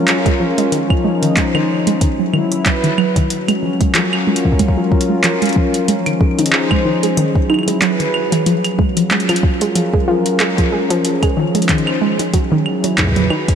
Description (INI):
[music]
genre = IDM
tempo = 93 BPM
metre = 4/4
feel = swing 56% on 16ths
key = Gb lydian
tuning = A4 = 439 Hz
[part]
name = warm analog pad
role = sustained chords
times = 0.0-13.6 s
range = F3 to C5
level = -18 LUFS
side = left 1 dB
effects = chorus
[part]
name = warbly dusty pluck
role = arpeggios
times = 0.0-13.5 s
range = Eb3 to D#4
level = -18 LUFS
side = right 1 dB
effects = chorus, ping-pong delay
[part]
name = electro analog drum machine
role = drums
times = 0.1-13.6 s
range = claves, handclaps, hi-hat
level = -20 LUFS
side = right 1 dB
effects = ping-pong delay
[part]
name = electronic kick drum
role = drums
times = 0.3-13.6 s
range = none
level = -16 LUFS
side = equal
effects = none
[sound]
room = moderate lush hall reverb, RT60 2.9 s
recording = big arena sound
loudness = -13 LUFS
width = side -8 dB against mid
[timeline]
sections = 0.0-13.6 A section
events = filter sweep on synth arpeggio sound 0.0-13.6; kick drops out 7.8-8.5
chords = 0.0 Gbmaj9; 0.7 Dbmaj9; 2.0 Emaj9; 3.3 Gbmaj9; 5.9 Dbmaj9; 7.2 Emaj9; 8.5 Gbmaj9; 11.0 Dbmaj9; 12.3 Emaj9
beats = 0.08 | 0.72 1.37 2.01 2.66 | 3.30 3.95 4.59 5.24 | 5.88 6.53 7.17 7.82 | 8.46 9.11 9.76 10.40 | 11.05 11.69 12.34 12.98